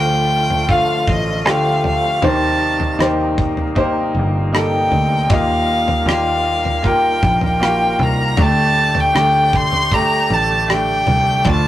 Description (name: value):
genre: pop ballad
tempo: 78 BPM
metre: 4/4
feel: straight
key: unclear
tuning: A4 = 440 Hz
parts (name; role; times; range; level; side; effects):
- clear violin; melody; 0.0-11.7 s; Eb5 to C6; -17 LUFS; equal; none
- bright concert grand piano; accompaniment; 0.0-11.7 s; A2 to F5; -19 LUFS; left 1 dB; none
- percussive tonewheel organ; sustained chords; 0.0-11.7 s; C3 to G4; -26 LUFS; equal; overdrive, fast rotary speaker
- fingered electric bass; bass; 0.0-11.7 s; G1 to Eb2; -21 LUFS; equal; none
- damped 70s drum kit; drums; 0.5-11.6 s; kick drum, rim click, toms; -20 LUFS; equal; none
room: wet booth ambience, RT60 0.2 s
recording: rough rehearsal-room recording, warm saturation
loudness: -13 LUFS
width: side -13 dB against mid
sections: 0.0-11.7 A section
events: none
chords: 0.0 Dm; 2.2 Cm7/Eb; 5.3 Ebadd9; 8.4 Dsus4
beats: 0.69 1.46 | 2.23 3.00 3.77 4.54 | 5.31 6.08 6.85 7.62 | 8.38 9.15 9.92 10.69 | 11.46